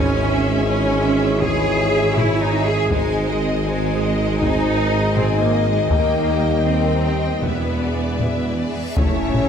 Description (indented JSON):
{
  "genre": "cinematic, epic orchestral film score",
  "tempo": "80 BPM",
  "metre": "4/4",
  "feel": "straight",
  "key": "Ab major",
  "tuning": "A4 = 441 Hz",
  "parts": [
    { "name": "clear symphonic violin section", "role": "melody", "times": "0.0-9.5 s", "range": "D5 to A5", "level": "-32 LUFS", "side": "left 3 dB", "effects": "none" },
    { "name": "rich symphonic violin section", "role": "second line", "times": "0.0-9.5 s", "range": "Eb4 to G5", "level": "-29 LUFS", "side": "left 2 dB", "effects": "none" },
    { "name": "clear studio viola section", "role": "accompaniment", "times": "0.0-9.5 s", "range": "Ab3 to E5", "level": "-26 LUFS", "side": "right 1 dB", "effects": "none" },
    { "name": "mellow French horn section", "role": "sustained chords", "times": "0.0-9.5 s", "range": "C#4 to Eb5", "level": "-26 LUFS", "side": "left 6 dB", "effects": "none" },
    { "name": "rich symphonic string section", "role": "sustained chords", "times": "0.0-9.5 s", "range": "Ab3 to E5", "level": "-29 LUFS", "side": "left 2 dB", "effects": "none" },
    { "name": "warm trombone section", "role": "sustained chords", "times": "0.0-9.5 s", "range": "A2 to E4", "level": "-27 LUFS", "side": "right 1 dB", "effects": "none" },
    { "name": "dark tuba", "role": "bass", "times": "0.0-9.5 s", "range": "E1 to Eb2", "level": "-24 LUFS", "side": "right 2 dB", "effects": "none" },
    { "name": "rich symphonic cello section", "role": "bass", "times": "0.0-9.5 s", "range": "C#3 to Ab4", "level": "-24 LUFS", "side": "right 3 dB", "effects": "none" },
    { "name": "rich symphonic double bass section", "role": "bass", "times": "0.0-9.5 s", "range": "Ab1 to E2", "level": "-25 LUFS", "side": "right 1 dB", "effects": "none" },
    { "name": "taiko ensemble", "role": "drums", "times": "1.4-9.5 s", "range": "none", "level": "-24 LUFS", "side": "left 1 dB", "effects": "none" },
    { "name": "reverse cymbal and impact", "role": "sound effects", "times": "8.7-9.5 s", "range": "none", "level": "-31 LUFS", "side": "equal", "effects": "none" }
  ],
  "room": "moderate scoring stage reverb, RT60 1.7 s",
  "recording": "none",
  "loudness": "-16 LUFS",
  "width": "side -7 dB against mid",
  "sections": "0.0-9.0 A section",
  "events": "reverse cymbal 8.7-9.0; impact 9.0-9.5",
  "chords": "0.0 Dbm/Ab; 2.9 Ab; 5.9 Eb; 7.4 E7; 9.0 A",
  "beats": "0.67 1.43 2.17 | 2.92 3.67 4.43 5.17 | 5.92 6.68 7.45 8.21 | 8.98"
}